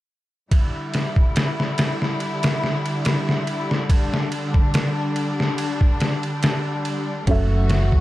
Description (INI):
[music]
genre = trip hop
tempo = 71 BPM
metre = 4/4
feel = swing 54% on 16ths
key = E dorian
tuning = A4 = 440 Hz
[part]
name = clear symphonic string section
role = sustained chords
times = 0.5-8.0 s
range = D3 to F#4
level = -25 LUFS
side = left 1 dB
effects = vintage 12-bit sampler grit
[part]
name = trip hop sampler-style drum kit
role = drums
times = 0.5-8.0 s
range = kick drum, ride cymbal, snare drum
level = -21 LUFS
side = equal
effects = none
[part]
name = felt-muted upright piano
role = accompaniment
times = 7.3-8.0 s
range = F#3 to E5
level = -24 LUFS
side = right 2 dB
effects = tremolo
[part]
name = deep dub fingered electric bass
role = bass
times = 7.3-8.0 s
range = F#1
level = -19 LUFS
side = equal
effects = none
[part]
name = darbuka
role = percussion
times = 7.7-7.9 s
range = none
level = -30 LUFS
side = left 1 dB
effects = none
[sound]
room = studio ambience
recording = dark, warm production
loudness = -19 LUFS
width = side -16 dB against mid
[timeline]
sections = 0.5-8.0 A section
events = none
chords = 0.5 Em7; 7.3 F#m7